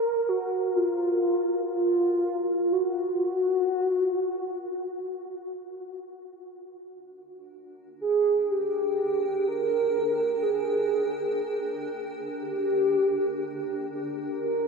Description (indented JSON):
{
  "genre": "ambient",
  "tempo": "free time",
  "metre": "none",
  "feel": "none",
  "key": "unclear",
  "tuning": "A4 = 439 Hz",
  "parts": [
    { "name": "mellow horn-like synth lead", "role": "melody", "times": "0.0-14.7 s", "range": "F4 to Bb4", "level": "-25 LUFS", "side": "right 1 dB", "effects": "wide subtle chorus, ping-pong delay" },
    { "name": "granular cloud pad", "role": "sustained chords", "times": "7.7-14.7 s", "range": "D4 to G5", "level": "-37 LUFS", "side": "equal", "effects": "built-in reverb" }
  ],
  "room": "wet huge ambient reverb, RT60 8.4 s",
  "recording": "none",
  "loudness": "-24 LUFS",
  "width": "side -4 dB against mid",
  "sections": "0.0-6.6 A section; 6.6-14.7 B section",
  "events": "fade-in on ambient pad 6.6-14.7",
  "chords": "0.0 N.C.; 6.6 Gm"
}